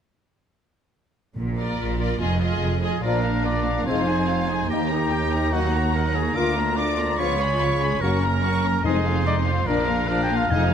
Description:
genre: cinematic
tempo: 145 BPM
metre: 4/4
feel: straight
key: Bb mixolydian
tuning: A4 = 443 Hz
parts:
  - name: rich symphonic cello section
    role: bass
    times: 1.4-10.7 s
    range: Db2 to Bb2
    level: -28 LUFS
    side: right 1 dB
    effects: none
  - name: rich symphonic double bass section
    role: bass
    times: 1.4-10.7 s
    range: F1 to Eb2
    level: -26 LUFS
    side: right 3 dB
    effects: none
  - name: timpani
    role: percussion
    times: 1.4-1.9, 8.8-10.7 s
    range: F2 to Bb2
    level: -28 LUFS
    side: equal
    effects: none
  - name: rich studio violin section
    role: melody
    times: 1.6-10.7 s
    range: D5 to D6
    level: -31 LUFS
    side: left 2 dB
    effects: none
  - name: rich symphonic violin section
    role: second line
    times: 1.6-10.7 s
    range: D4 to Bb4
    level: -33 LUFS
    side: left 2 dB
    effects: none
  - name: warm symphonic viola section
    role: accompaniment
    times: 1.6-10.7 s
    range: F3 to F4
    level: -30 LUFS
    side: left 2 dB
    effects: none
  - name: warm trumpet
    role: stabs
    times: 2.8-10.7 s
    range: Gb4 to G5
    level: -27 LUFS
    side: right 2 dB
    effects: none
  - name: bright oboe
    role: second line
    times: 3.0-10.7 s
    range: Ab5 to C6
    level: -31 LUFS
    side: left 1 dB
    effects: none
  - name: warm clarinet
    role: second line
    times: 3.0-10.7 s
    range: Db4 to F4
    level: -31 LUFS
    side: left 2 dB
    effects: none
  - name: mellow French horn section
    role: sustained chords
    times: 3.0-10.7 s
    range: F3 to Gb4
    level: -30 LUFS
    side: left 6 dB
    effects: none
room: moderate scoring stage reverb, RT60 1.9 s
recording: none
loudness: -20 LUFS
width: side -8 dB against mid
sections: 1.4-3.0 A section; 3.0-10.7 B section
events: none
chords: 1.4 Bb; 2.2 Fm7; 3.0 Bb; 3.9 Fm7; 4.7 Eb; 5.5 Ebm; 6.4 Bb/D; 7.2 Db7; 8.0 Gb; 8.8 Fm7; 9.7 Bb

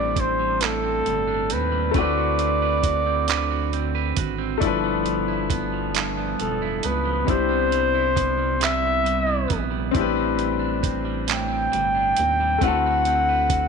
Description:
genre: slow six-eight R&B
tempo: 45 BPM (dotted quarters)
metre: 6/8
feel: straight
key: A minor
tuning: A4 = 440 Hz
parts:
  - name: warm flugelhorn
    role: melody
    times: 0.0-13.7 s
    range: A4 to G5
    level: -22 LUFS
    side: equal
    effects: none
  - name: electric guitar at the edge of break-up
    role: second line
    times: 0.0-13.7 s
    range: G2 to B4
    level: -28 LUFS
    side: right 14 dB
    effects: none
  - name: clear grand piano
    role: accompaniment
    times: 0.0-13.7 s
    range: C3 to B4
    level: -27 LUFS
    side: left 14 dB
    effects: none
  - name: rubbery square bass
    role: bass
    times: 0.0-13.7 s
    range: E1 to D#2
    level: -28 LUFS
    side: equal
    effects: none
  - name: dusty soul sampler-style drum kit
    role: drums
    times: 0.2-13.7 s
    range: handclaps, hi-hat, kick drum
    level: -26 LUFS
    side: right 4 dB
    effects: none
room: light reverb, digital ambience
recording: 1960s-style stereo with parts hard left and right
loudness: -20 LUFS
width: side -5 dB against mid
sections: 0.0-13.7 A section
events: none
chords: 0.0 Am7; 1.9 D13; 4.6 G13; 7.3 Cmaj7; 9.9 Am11; 12.6 D13

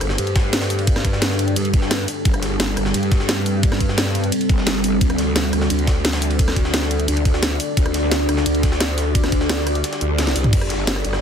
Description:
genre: dark technical drum and bass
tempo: 174 BPM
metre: 4/4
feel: straight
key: unclear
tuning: A4 = 440 Hz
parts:
  - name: deep dark ambient pad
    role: sustained chords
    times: 0.0-11.2 s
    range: G3 to D5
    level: -23 LUFS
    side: equal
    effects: chorus, built-in reverb, sidechain pumping
  - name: growl bass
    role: bass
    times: 0.0-11.2 s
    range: G1 to G2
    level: -22 LUFS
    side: equal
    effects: chorus, overdrive
  - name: drum and bass drum kit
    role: drums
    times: 0.0-11.2 s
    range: crash cymbal, hi-hat, rim click, snare drum, toms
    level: -23 LUFS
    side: equal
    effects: none
  - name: jungle sampler-style drum kit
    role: drums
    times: 0.0-11.2 s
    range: ride cymbal, snare drum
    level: -29 LUFS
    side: right 1 dB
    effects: high-pass filter on cymbals, high-pass filter on snare, high-pass filter on room
  - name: electronic kick drum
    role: drums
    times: 0.4-10.6 s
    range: none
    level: -18 LUFS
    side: equal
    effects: none
room: light reverb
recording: dense, heavily limited modern master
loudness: -16 LUFS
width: side -8 dB against mid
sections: 0.0-10.5 A section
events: drop 0.0-10.5; kick drops out 9.8-10.5; drum fill 10.2-10.5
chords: 0.0 Gsus2; 5.0 D5; 10.5 Gsus2

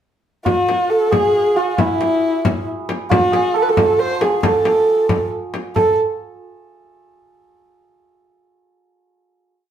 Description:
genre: Persian modal ensemble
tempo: 90 BPM (dotted quarters)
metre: 6/8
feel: straight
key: A avaz esfahan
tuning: A4 = 440 Hz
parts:
  - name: dark kamancheh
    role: melody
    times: 0.5-6.0 s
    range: E4 to C5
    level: -16 LUFS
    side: right 1 dB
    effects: none
  - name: santur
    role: second line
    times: 0.5-6.4 s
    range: E4 to A4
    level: -21 LUFS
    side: right 4 dB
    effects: none
  - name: frame drum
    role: percussion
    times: 0.5-6.0 s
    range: none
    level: -20 LUFS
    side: left 3 dB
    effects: none
room: moderate studio reverb, RT60 0.8 s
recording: band playing live in one room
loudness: -14 LUFS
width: side -9 dB against mid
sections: 0.5-5.8 A section; 5.8-7.1 final note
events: none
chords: none

